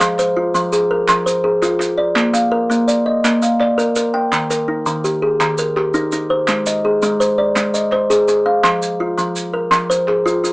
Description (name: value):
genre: southern african traditional, mbira-style interlocking cycle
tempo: 111 BPM (dotted quarters)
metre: 12/8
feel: straight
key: unclear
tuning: A4 = 440 Hz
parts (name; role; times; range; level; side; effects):
- kalimba; arpeggios; 0.0-10.5 s; Eb3 to G5; -14 LUFS; equal; none
- group handclap; percussion; 0.0-10.2 s; none; -21 LUFS; right 2 dB; none
- maracas; percussion; 0.0-10.5 s; none; -27 LUFS; right 3 dB; none
room: light reverb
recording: small speaker sound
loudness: -14 LUFS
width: side -24 dB against mid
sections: 0.0-10.5 A section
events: none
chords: 0.0 Fm; 2.2 Bb; 4.3 Eb; 6.5 Ab; 8.6 Fm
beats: | 0.00 0.54 1.08 1.62 | 2.16 2.70 3.24 3.78 | 4.32 4.86 5.40 5.94 | 6.48 7.02 7.56 8.10 | 8.64 9.18 9.72 10.26